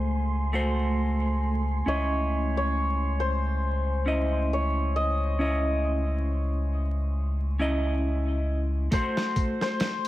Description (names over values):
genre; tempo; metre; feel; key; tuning
trip hop; 68 BPM; 4/4; swing 56% on 16ths; C# harmonic minor; A4 = 440 Hz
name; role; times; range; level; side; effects
santur; melody; 0.0-10.1 s; B#4 to D#5; -32 LUFS; left 2 dB; vintage 12-bit sampler grit, tape echo
clean electric guitar; accompaniment; 0.0-10.1 s; A3 to D#5; -30 LUFS; equal; harmonic tremolo, tape echo
dark analog pad; sustained chords; 0.0-8.9 s; A3 to G#5; -36 LUFS; right 2 dB; chorus
round analog bass; bass; 0.0-8.9 s; C#2; -26 LUFS; equal; none
wind-like tuned noise texture; texture; 0.0-8.9 s; B#5; -42 LUFS; right 4 dB; built-in reverb
boom bap sampler-style drum kit; drums; 8.9-10.1 s; hi-hat, kick drum, snare drum; -28 LUFS; equal; small room reverb
room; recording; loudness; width
light reverb; vinyl crackle; -24 LUFS; side -15 dB against mid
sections
0.0-8.9 A section; 8.9-10.1 B section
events
none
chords
0.0 G#7b9/C#; 1.9 C#madd9; 8.9 G#7b9 (rootless)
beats
0.10 0.98 | 1.86 2.75 3.63 4.51 | 5.39 6.28 7.16 8.04 | 8.92 9.80